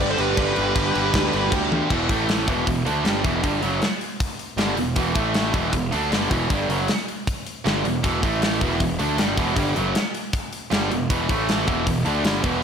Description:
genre	heavy metal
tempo	156 BPM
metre	4/4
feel	straight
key	E minor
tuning	A4 = 440 Hz
part	high-gain lead guitar	melody	0.0-1.5 s	B4 to D5	-26 LUFS	left 3 dB	distortion
part	smooth overdriven lead guitar	second line	0.0-1.5 s	G4 to B4	-30 LUFS	right 6 dB	none
part	cranked stack guitar	riff	0.0-12.6 s	E2 to D4	-28 LUFS	left 1 dB	overdrive
part	heavy high-gain guitar	riff	0.0-12.6 s	E2 to D4	-25 LUFS	right 10 dB	distortion
part	tight distorted guitar	riff	0.0-12.6 s	E2 to G4	-29 LUFS	left 12 dB	distortion
part	fuzz picked electric bass	bass	0.0-12.6 s	E1 to D2	-28 LUFS	left 1 dB	overdrive
part	tight metal drum kit	drums	0.2-12.5 s	crash cymbal, hi-hat, kick drum, snare drum, toms	-24 LUFS	left 1 dB	soft clipping on kick
room	small room ambience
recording	blown-out, overdriven recording, overdrive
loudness	-20 LUFS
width	side -7 dB against mid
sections	0.0-1.9 A section; 1.9-12.6 B section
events	half time 0.0-1.9; drum fill 1.7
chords	0.0 G; 1.9 E5; 2.1 A5; 2.5 Em; 5.2 A5; 5.5 Em; 8.2 A5; 8.6 Em; 11.3 A5; 11.7 Em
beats	0.00 | 0.38 0.76 1.14 1.52 | 1.90 2.28 2.66 3.05 | 3.43 3.81 4.20 4.58 | 4.96 5.35 5.73 6.12 | 6.50 6.88 7.27 7.65 | 8.04 8.42 8.80 9.19 | 9.57 9.95 10.34 10.72 | 11.10 11.48 11.87 12.25

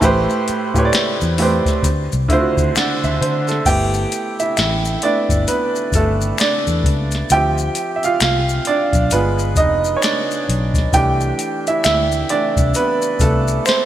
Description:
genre	R&B, neo-soul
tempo	66 BPM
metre	4/4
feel	swing 61% on 16ths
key	G major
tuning	A4 = 439 Hz
part	clear upright piano	accompaniment	0.0-13.9 s	A2 to A5	-17 LUFS	right 2 dB	none
part	vintage muted fingered electric bass	bass	0.0-13.6 s	F1 to D3	-20 LUFS	left 1 dB	none
part	soft vintage rhythm box	drums	0.0-13.9 s	crash cymbal, hi-hat, kick drum, snare drum	-20 LUFS	left 1 dB	gated reverb
part	maracas and finger snaps	percussion	0.0-13.9 s	none	-29 LUFS	left 8 dB	none
room	moderate lush hall reverb, RT60 2.7 s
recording	bright 1980s-style digital production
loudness	-15 LUFS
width	side -12 dB against mid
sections	0.0-3.7 A section; 3.7-13.9 B section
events	upright piano solo 3.7-13.9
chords	0.0 Am9; 1.8 D9; 3.7 G69; 7.3 Dm7; 9.1 G7b9; 10.9 C6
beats	| 0.02 0.93 1.84 2.75 | 3.66 4.57 5.47 6.38 | 7.29 8.20 9.11 10.02 | 10.93 11.84 12.75 13.66

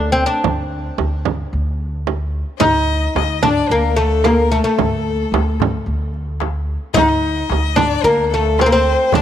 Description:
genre	Arabic maqam ensemble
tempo	110 BPM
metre	4/4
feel	straight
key	D maqam hijaz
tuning	A4 = 440 Hz
part	oud	melody	0.0-9.2 s	A3 to Eb4+25c	-16 LUFS	left 1 dB	none
part	upright bass	bass	0.0-9.2 s	D2	-20 LUFS	equal	none
part	frame drum	percussion	0.4-9.2 s	none	-21 LUFS	right 11 dB	none
part	clear violin	second line	2.6-9.2 s	A4 to F#5	-24 LUFS	left 10 dB	none
part	darbuka	percussion	2.6-9.2 s	none	-26 LUFS	left 7 dB	none
room	light reverb, small room ambience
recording	1960s-style stereo with parts hard left and right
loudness	-15 LUFS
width	side -10 dB against mid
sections	0.0-9.2 A section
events	none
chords	none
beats	| 0.44 0.99 1.53 2.07 | 2.62 3.16 3.71 4.25 | 4.79 5.33 5.88 6.42 | 6.96 7.51 8.05 8.60 | 9.14

